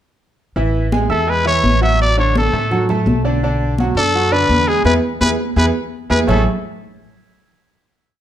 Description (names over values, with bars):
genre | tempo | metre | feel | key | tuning
latin, salsa | 168 BPM | 4/4 | straight | A major | A4 = 437 Hz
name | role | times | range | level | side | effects
bright concert grand piano | accompaniment | 0.6-6.5 s | D3 to E6 | -20 LUFS | right 2 dB | none
upright bass | bass | 0.6-6.4 s | A1 to A2 | -18 LUFS | equal | none
congas | percussion | 0.6-6.4 s | none | -21 LUFS | equal | none
growling trumpet | melody | 1.1-6.5 s | G#4 to E5 | -17 LUFS | left 1 dB | none
room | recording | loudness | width
moderate large studio reverb, RT60 1.2 s | dark, warm production | -13 LUFS | side -11 dB against mid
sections
0.6-6.3 verse; 6.3-7.7 final chord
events
band accent 4.9-6.3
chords
0.6 Amaj7; 2.0 D/A; 3.4 Bm7; 4.9 E; 6.3 Amaj7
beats
| 0.56 0.92 1.28 1.64 | 1.99 2.35 2.71 3.07 | 3.43 3.78 4.14 4.50 | 4.86 5.21 5.57 5.93 | 6.28